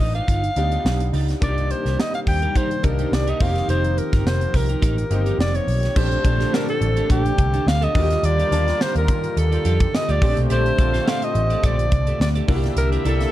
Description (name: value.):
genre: polished 1980s jazz-funk pop.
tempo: 106 BPM.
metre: 4/4.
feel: swing 54% on 16ths.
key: Bb major.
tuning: A4 = 441 Hz.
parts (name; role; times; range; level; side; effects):
breathy alto saxophone; melody; 0.0-13.3 s; G4 to G5; -24 LUFS; equal; none.
clear concert grand piano; accompaniment; 0.0-13.3 s; D3 to A5; -29 LUFS; left 1 dB; ensemble chorus.
clean electric guitar; riff; 0.0-13.2 s; D4 to F5; -31 LUFS; right 5 dB; analog chorus.
vintage muted picked electric bass; bass; 0.0-13.2 s; F1 to Eb3; -21 LUFS; equal; none.
crisp fusion drum kit; drums; 0.0-13.3 s; crash cymbal, hi-hat, kick drum, snare drum; -23 LUFS; equal; none.
warm analog pad; sustained chords; 1.4-13.3 s; Bb2 to Bb4; -31 LUFS; left 1 dB; chorus, tremolo.
warm horn section; second line; 6.0-13.3 s; F3 to E5; -32 LUFS; left 1 dB; tape echo.
room: light reverb, small room ambience.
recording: dark, warm production.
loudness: -17 LUFS.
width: side -14 dB against mid.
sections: 0.0-6.0 A section; 6.0-13.3 B section.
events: none.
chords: 0.0 G7b13; 1.4 Cm7; 3.4 F9sus4; 6.0 Bbmaj13; 7.9 Ebmaj9; 10.2 Bbmaj13; 12.5 C9.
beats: 0.28 0.85 | 1.42 1.99 2.56 3.12 | 3.69 4.26 4.83 5.39 | 5.96 6.53 7.10 7.66 | 8.23 8.80 9.37 9.93 | 10.50 11.07 11.63 12.20 | 12.77.